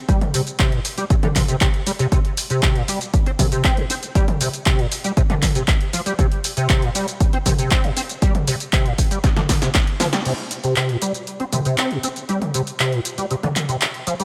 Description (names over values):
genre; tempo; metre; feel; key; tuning
acid house; 118 BPM; 4/4; straight; unclear; A4 = 440 Hz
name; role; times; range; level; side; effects
liquid acid bass; riff; 0.1-14.2 s; Bb2 to C4; -25 LUFS; equal; overdrive, ensemble chorus, delay
electronic kick drum; drums; 0.1-9.8 s; none; -21 LUFS; equal; none
punchy analog drum machine; drums; 0.1-14.2 s; crash cymbal, handclaps, hi-hat, shaker, snare drum, toms; -25 LUFS; equal; none
room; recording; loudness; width
light reverb, digital ambience; none; -20 LUFS; mono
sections
0.0-10.3 A section; 10.3-14.2 B section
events
filter sweep on acid bass 0.0-10.3, 10.3-14.2; drum fill 9.2-10.3; band accent 10.1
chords
none